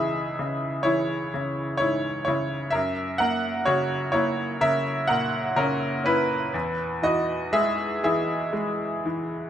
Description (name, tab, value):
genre	classical, lyrical solo piano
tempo	63 BPM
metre	4/4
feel	rubato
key	unclear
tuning	A4 = 440 Hz
part	bright upright piano	solo	0.0-9.5 s	C#2 to F#5	-23 LUFS	equal	none
room	moderate recital hall reverb, RT60 1.7 s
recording	minimal, uncompressed stereo recording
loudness	-23 LUFS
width	side -10 dB against mid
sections	0.0-9.5 A section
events	none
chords	0.0 C#m; 2.7 F#; 6.5 E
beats	0.86 1.80 | 2.74 3.67 4.62 5.58 | 6.54 7.53 8.55